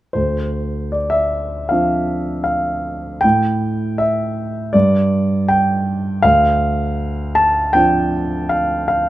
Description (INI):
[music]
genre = classical, lyrical solo piano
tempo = 79 BPM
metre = 4/4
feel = rubato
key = D minor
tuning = A4 = 438 Hz
[part]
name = warm grand piano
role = solo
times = 0.1-9.1 s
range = D2 to A5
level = -15 LUFS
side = equal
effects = none
[sound]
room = light reverb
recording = close, detailed microphones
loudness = -15 LUFS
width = side -15 dB against mid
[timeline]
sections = 0.1-9.1 A section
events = none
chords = 0.1 Dm7; 3.2 N.C.; 6.2 Dm7